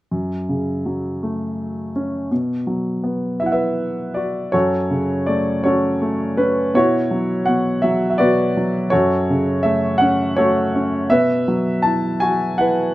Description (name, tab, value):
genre	classical, lyrical solo piano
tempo	55 BPM (dotted quarters)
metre	6/8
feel	rubato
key	F# minor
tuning	A4 = 440 Hz
part	clear grand piano	solo	0.1-12.9 s	F#2 to A5	-17 LUFS	equal	none
room	light reverb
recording	close, detailed microphones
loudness	-17 LUFS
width	side -16 dB against mid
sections	0.1-4.5 A section; 4.5-12.9 B section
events	none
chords	0.1 F#m; 2.3 Bsus4; 4.5 F#m; 6.7 Bsus4; 8.9 F#m; 11.1 Bsus4